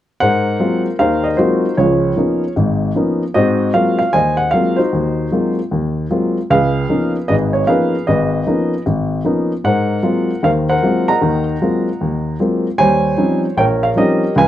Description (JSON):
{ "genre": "solo jazz", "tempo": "153 BPM", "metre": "4/4", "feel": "swing 64% on 8ths", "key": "Ab mixolydian", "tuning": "A4 = 436 Hz", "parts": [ { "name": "dark upright piano", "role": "solo", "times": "0.2-14.5 s", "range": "Ab1 to Bb5", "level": "-13 LUFS", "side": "equal", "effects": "none" } ], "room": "moderate studio reverb, RT60 0.7 s", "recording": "dark, warm production", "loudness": "-14 LUFS", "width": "side -12 dB against mid", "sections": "0.2-14.5 A section", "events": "none", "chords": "0.2 Ab13; 1.8 Db13; 3.3 Ab13; 6.5 Db13; 9.6 Ab13; 12.8 Eb13" }